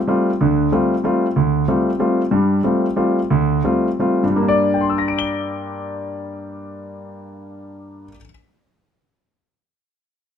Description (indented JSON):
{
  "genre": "jazz",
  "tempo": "160-188 BPM",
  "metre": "3/4",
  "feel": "swing 63% on 8ths",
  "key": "G dorian",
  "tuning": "A4 = 441 Hz",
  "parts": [
    { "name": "warm concert grand piano", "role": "solo", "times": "0.1-8.3 s", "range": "D2 to G7", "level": "-17 LUFS", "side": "equal", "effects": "none" }
  ],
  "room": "light reverb",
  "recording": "close, detailed microphones",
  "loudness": "-16 LUFS",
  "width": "side -8 dB against mid",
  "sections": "0.0-2.3 A section; 2.3-4.4 B section; 4.4-6.6 C section",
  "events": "slowing down 2.3-4.4",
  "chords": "0.0 G9sus4; 4.4 Gm"
}